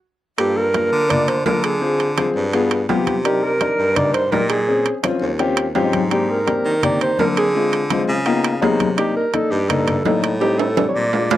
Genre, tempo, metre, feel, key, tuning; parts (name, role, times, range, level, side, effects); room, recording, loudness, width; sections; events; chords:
Afro-Cuban jazz; 168 BPM; 4/4; straight; G minor; A4 = 440 Hz
dark alto saxophone; melody; 0.4-11.4 s; G4 to D5; -20 LUFS; right 2 dB; slapback echo
warm grand piano; accompaniment; 0.4-11.4 s; G3 to Ab5; -20 LUFS; left 3 dB; slapback echo
breathy baritone saxophone; bass; 0.4-11.4 s; Eb2 to Eb3; -23 LUFS; right 1 dB
congas; percussion; 0.4-11.4 s; -27 LUFS; left 2 dB
timbales; percussion; 0.4-11.4 s; -22 LUFS; right 7 dB
little or no reverb; recorded outdoors, with no room sound; -16 LUFS; side -13 dB against mid
0.4-11.4 A section
stop 0.0-0.4; grand piano fill 5.6-6.1, 7.9-9.0; drum fill 10.4-11.4
0.4 Gm7; 1.8 Dm7b5; 2.5 G7b9; 3.2 Cm9; 4.7 Bbm7; 5.4 Eb13; 6.1 Abmaj9#11; 7.5 Dm7b5; 8.3 C#13; 9.0 Cm9; 10.4 Am7b5